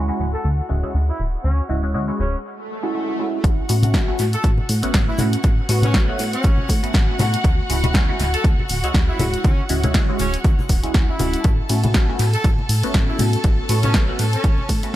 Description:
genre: filtered disco house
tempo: 120 BPM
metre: 4/4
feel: swing 56% on 16ths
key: A major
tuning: A4 = 438 Hz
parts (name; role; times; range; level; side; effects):
- funky polysynth comp; accompaniment; 0.0-14.9 s; G#3 to F#4; -26 LUFS; equal; chorus, phaser, cassette tape, sidechain pumping, low-pass filter, dub echo
- warm chamber violin section; sustained chords; 0.0-15.0 s; F#4 to A5; -30 LUFS; left 1 dB; vintage 12-bit sampler grit, sidechain pumping, low-pass filter
- plucky analog bass; bass; 0.0-14.9 s; D1 to A2; -21 LUFS; equal; sidechain pumping, low-pass filter
- bright horn section; melody; 0.3-14.7 s; C#4 to A4; -30 LUFS; equal; sidechain pumping, low-pass filter, dub echo
- swell; sound effects; 2.6-3.4 s; none; -31 LUFS; right 2 dB; none
- electronic kick drum; drums; 3.4-14.8 s; none; -18 LUFS; equal; none
- punchy analog drum machine; drums; 3.4-14.9 s; hi-hat, ride cymbal, snare drum; -26 LUFS; equal; sidechain pumping on hats, low-pass filter on hats, low-pass filter on snare, sidechain pumping on cymbals, low-pass filter on cymbals, low-pass filter on room, dub echo
- egg shaker and congas; percussion; 3.4-14.9 s; none; -27 LUFS; left 2 dB; sidechain pumping on perc, low-pass filter on perc, dub echo
room: digital ambience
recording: echo-heavy mix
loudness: -16 LUFS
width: side -14 dB against mid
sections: 0.0-3.4 A section; 3.4-15.0 B section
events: filter sweep 0.0-3.4; break 2.4-3.4; swell 2.6-3.4; drop 3.4-15.0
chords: 0.0 Dmaj9#11; 3.4 A69; 7.4 Dmaj9#11; 11.4 A69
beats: 0.44 0.94 | 1.44 1.94 2.44 2.94 | 3.44 3.94 4.44 4.94 | 5.44 5.94 6.44 6.94 | 7.44 7.94 8.44 8.94 | 9.44 9.94 10.44 10.94 | 11.44 11.94 12.44 12.94 | 13.44 13.94 14.44 14.94

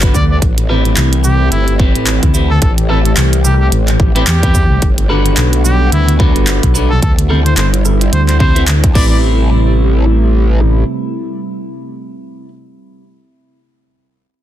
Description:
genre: glitch hop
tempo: 109 BPM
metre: 4/4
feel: swing 58% on 16ths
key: A dorian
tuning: A4 = 440 Hz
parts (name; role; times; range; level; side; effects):
- warbly tape-like pad; sustained chords; 0.0-12.2 s; C3 to G4; -20 LUFS; right 1 dB; chorus, built-in reverb, sidechain pumping
- clean electric guitar; stabs; 0.0-12.5 s; C4 to C5; -20 LUFS; equal; vintage 12-bit sampler grit, sidechain pumping, tape echo
- growl bass; bass; 0.0-10.8 s; G1 to E2; -12 LUFS; equal; chorus
- electronic kick drum; drums; 0.0-9.1 s; none; -13 LUFS; equal; overdrive
- glitchy drum kit; drums; 0.0-9.1 s; crash cymbal, handclaps, hi-hat, rim click, shaker; -19 LUFS; right 1 dB; none
- clear trumpet; melody; 0.1-9.2 s; E4 to D5; -21 LUFS; equal; vintage 12-bit sampler grit, tape echo
room: light reverb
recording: dense, heavily limited modern master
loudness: -9 LUFS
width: side -12 dB against mid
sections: 0.0-9.2 A section; 9.2-11.4 B section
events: drop 0.0-9.2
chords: 0.4 Am7; 4.8 Gmaj7; 7.0 D9sus4; 8.9 Am7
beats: | 0.42 0.97 1.52 2.07 | 2.62 3.17 3.72 4.27 | 4.82 5.37 5.92 6.47 | 7.02 7.57 8.12 8.68 | 9.22 9.78 10.33 10.88

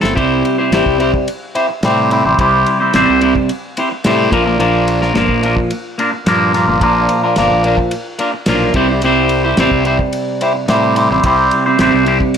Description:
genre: psychedelic rock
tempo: 108 BPM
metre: 4/4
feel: straight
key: unclear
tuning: A4 = 439 Hz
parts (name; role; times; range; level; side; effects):
- twangy electric guitar; riff; 0.0-12.3 s; Bb2 to C5; -12 LUFS; equal; phaser
- fuzz fingered electric bass; bass; 0.0-12.2 s; G1 to A2; -20 LUFS; equal; overdrive
- cloth-damped thuddy drum kit; drums; 0.0-12.4 s; kick drum, ride cymbal, snare drum; -22 LUFS; equal; none
room: light reverb, small room ambience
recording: none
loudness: -11 LUFS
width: side -8 dB against mid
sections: 0.2-12.4 A section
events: drum fill 0.0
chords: 0.2 C; 4.3 Bb; 8.8 C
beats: | 0.17 0.72 1.27 1.83 | 2.38 2.94 3.49 4.05 | 4.60 5.15 5.71 6.26 | 6.82 7.37 7.92 8.48 | 9.03 9.58 10.14 10.69 | 11.24 11.80 12.35

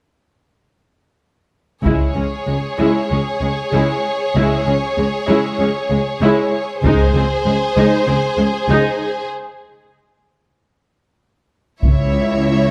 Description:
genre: cinematic, epic orchestral film score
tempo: 96 BPM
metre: 4/4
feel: straight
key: unclear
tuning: A4 = 440 Hz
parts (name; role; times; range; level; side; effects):
- warm symphonic violin section; second line; 1.8-12.7 s; G#4 to C#5; -22 LUFS; equal; none
- rich symphonic viola section; accompaniment; 1.8-12.7 s; G#3 to E4; -22 LUFS; equal; none
- rich symphonic cello section; bass; 1.8-12.7 s; C#2; -21 LUFS; equal; none
- warm symphonic double bass section; bass; 1.8-7.1, 11.8-12.4 s; C#2; -23 LUFS; equal; none
- solo taiko drums; drums; 1.9-3.1, 6.8-8.0, 11.8-12.7 s; none; -22 LUFS; equal; none
- rich symphonic violin section; melody; 11.8-12.7 s; E5; -29 LUFS; equal; none
room: light reverb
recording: close, detailed microphones, lossy compression artefacts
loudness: -17 LUFS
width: mono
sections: 1.9-11.8 A section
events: break 9.3-11.8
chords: 1.9 C#m; 6.8 G#/C#; 11.8 C#m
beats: | 1.85 2.48 3.11 3.73 | 4.36 4.98 5.60 6.21 | 6.84 7.46 8.07 8.69 | 9.31 9.93 10.56 11.19 | 11.82 12.45

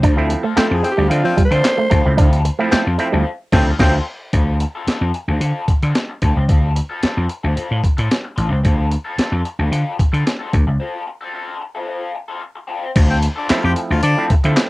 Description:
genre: funk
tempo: 111 BPM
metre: 4/4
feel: straight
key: D minor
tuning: A4 = 440 Hz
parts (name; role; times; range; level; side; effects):
- growling alto saxophone; melody; 0.0-2.2 s; F4 to C5; -20 LUFS; equal; cassette tape, tape echo
- raw garage guitar; accompaniment; 0.0-14.6 s; C4 to A4; -26 LUFS; left 3 dB; wah, overdrive
- electric guitar with an envelope filter; riff; 0.0-3.2 s; F3 to D4; -20 LUFS; right 5 dB; none
- vintage slap bass; bass; 0.0-14.5 s; A1 to D3; -17 LUFS; equal; none
- breakbeat sampler-style drum kit; drums; 0.0-14.7 s; crash cymbal, handclaps, hi-hat, kick drum, snare drum; -16 LUFS; equal; cassette tape
- auto-wah clav; stabs; 0.2-4.0, 13.5-14.7 s; F3 to E4; -23 LUFS; right 3 dB; none
- clear baritone saxophone; second line; 0.6-3.9, 13.1-14.2 s; C4 to G4; -20 LUFS; left 2 dB; none
room: light reverb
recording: home recording on cassette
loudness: -15 LUFS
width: side -20 dB against mid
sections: 0.0-4.3 A section; 4.3-13.0 B section; 13.0-14.7 C section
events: alto saxophone solo 0.0-4.3; band accent 3.3-4.3; break 10.8-13.0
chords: 0.0 Dm7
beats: | 0.03 0.57 1.11 1.65 | 2.18 2.72 3.26 3.79 | 4.33 4.87 5.41 5.95 | 6.49 7.03 7.57 8.11 | 8.65 9.19 9.73 10.27 | 10.81 11.35 11.88 12.42 | 12.96 13.50 14.04 14.57

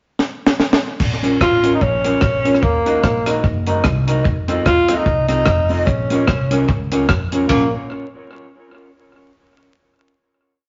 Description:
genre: ska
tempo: 148 BPM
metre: 4/4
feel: swing 57% on 8ths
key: Bb harmonic minor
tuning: A4 = 439 Hz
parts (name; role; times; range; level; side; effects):
- deep reggae drum kit; drums; 0.2-7.6 s; crash cymbal, hi-hat, kick drum, ride cymbal, rim click, snare drum; -21 LUFS; equal; tape echo
- upright bass; bass; 1.0-7.7 s; F1 to F2; -24 LUFS; equal; none
- mellow electric guitar; accompaniment; 1.2-7.6 s; C4 to Eb5; -22 LUFS; equal; tape echo
- warm tenor saxophone; melody; 1.4-7.7 s; Bb3 to F4; -20 LUFS; equal; none
room: moderate studio reverb, RT60 0.9 s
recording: vinyl crackle, nothing above 7.6 kHz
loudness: -17 LUFS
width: mono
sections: 0.0-1.0 pickup bar; 1.0-7.5 A section; 7.5-9.1 final chord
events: drum fill 0.2-1.0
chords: 0.0 N.C.; 1.0 Bbm; 2.6 Ebm; 4.3 F7; 5.9 Bbm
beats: 0.19 0.59 | 1.00 1.41 1.82 2.22 | 2.63 3.04 3.44 3.85 | 4.25 4.66 5.07 5.47 | 5.88 6.28 6.69 7.10 | 7.50

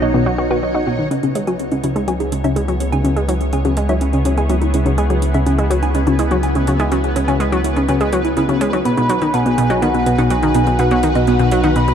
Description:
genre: ambient, sequencer-driven space music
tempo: 124 BPM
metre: 4/4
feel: straight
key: C# minor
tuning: A4 = 436 Hz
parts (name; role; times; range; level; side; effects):
- string machine, full ensemble; sustained chords; 0.0-11.9 s; D#4 to C#5; -24 LUFS; equal; ensemble chorus
- warbly dusty pluck; arpeggios; 0.0-11.9 s; B3 to C#6; -24 LUFS; moving between left 1 dB and right 6 dB; chorus, auto-pan, analog delay
- analog pluck; riff; 0.0-11.9 s; B2 to F#4; -17 LUFS; left 1 dB; chorus, cassette tape, analog delay
- warm sub bass; bass; 0.0-11.9 s; B1 to C#2; -20 LUFS; equal; none
- electronic hi-hat and bongos; percussion; 1.1-11.9 s; none; -30 LUFS; right 5 dB; analog delay
- pulsing gated texture; texture; 1.1-11.9 s; B3 to B4; -26 LUFS; equal; chorus, built-in reverb
- soft octave-layered synth lead; melody; 8.9-11.9 s; F#5 to B5; -20 LUFS; equal; chorus, analog delay
room: moderate huge ambient reverb, RT60 8.0 s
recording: none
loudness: -14 LUFS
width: side -8 dB against mid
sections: 0.0-1.1 A section; 1.1-11.9 B section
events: fade-in on string machine 1.1-11.9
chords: 0.0 B; 1.1 C#m; 8.9 B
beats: 0.14 0.63 | 1.11 1.59 2.08 2.56 | 3.05 3.53 4.01 4.50 | 4.98 5.47 5.95 6.43 | 6.92 7.40 7.88 8.37 | 8.85 9.34 9.82 10.30 | 10.79 11.27 11.76

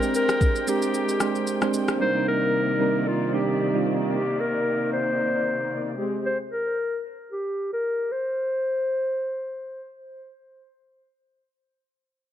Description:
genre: amapiano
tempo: 113 BPM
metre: 4/4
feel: swing 55% on 16ths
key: unclear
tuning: A4 = 443 Hz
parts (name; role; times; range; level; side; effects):
- clear clarinet; melody; 0.0-10.0 s; F4 to C5; -26 LUFS; left 1 dB; low-pass filter, tape echo
- soft electric-piano-like synth keys; accompaniment; 0.0-4.1 s; G3 to G5; -24 LUFS; right 3 dB; chorus, low-pass filter
- clear studio string section; sustained chords; 0.0-6.2 s; C3 to G5; -28 LUFS; left 2 dB; sidechain pumping, low-pass filter
- smooth R&B drum kit; drums; 0.0-2.0 s; kick drum, rim click, shaker; -26 LUFS; equal; none
room: light reverb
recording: none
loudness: -22 LUFS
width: side -10 dB against mid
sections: 0.0-10.5 A section; 10.5-12.3 B section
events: filter sweep 0.0-10.5; break 0.9-2.0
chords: 0.0 Abmaj9#11; 2.0 Cm9; 6.0 Abmaj7; 10.5 N.C.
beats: 0.41 0.94 1.47 | 2.00 2.53 3.06 3.59 | 4.12 4.66 5.19 5.72 | 6.25 6.78 7.31 7.84 | 8.37 8.90 9.44 9.97

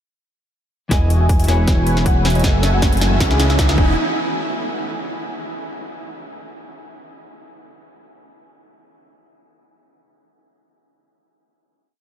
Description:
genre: future bass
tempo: 157 BPM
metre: 4/4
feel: swing 54% on 16ths, half-time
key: E major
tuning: A4 = 440 Hz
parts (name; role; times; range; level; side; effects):
- dark concert grand piano; melody; 0.9-3.9 s; D#5 to G#5; -28 LUFS; left 2 dB; wide subtle chorus, sidechain pumping, analog delay
- clean electric guitar; accompaniment; 0.9-3.9 s; C#3 to G#5; -28 LUFS; left 2 dB; none
- shimmering ambient pad; sustained chords; 1.4-4.0 s; A3 to G#5; -29 LUFS; equal; chorus, built-in reverb, sidechain pumping
- supersaw chords; riff; 0.9-3.9 s; E3 to G#5; -27 LUFS; right 1 dB; ensemble chorus, sidechain pumping, low-pass filter
- fat analog bass; bass; 0.9-4.0 s; E1 to C#2; -17 LUFS; equal; sidechain pumping
- electronic kick drum; drums; 0.9-3.9 s; none; -17 LUFS; equal; overdrive
- trap drum kit; drums; 0.9-3.8 s; hi-hat, snare drum; -25 LUFS; equal; overdrive, high-pass filter on snare, high-pass filter on hats
- riser; sound effects; 2.2-4.0 s; none; -28 LUFS; right 3 dB; none
room: moderate huge ambient reverb, RT60 9.2 s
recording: dreamy mix soaked in reverb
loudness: -15 LUFS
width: side -10 dB against mid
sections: 0.9-4.0 build; 4.0-5.5 final hit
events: build-up 0.9-4.0; drum fill 0.9-4.0; filter sweep on supersaw synth 0.9-4.0; riser 2.2-4.0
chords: 0.9 Emaj9; 1.5 Amaj7/E; 2.4 F#m9; 3.2 C#m9; 3.8 Emaj9; 4.0 N.C.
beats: | 0.91 1.29 1.68 2.06 | 2.44 2.82 3.21 3.59 | 3.97

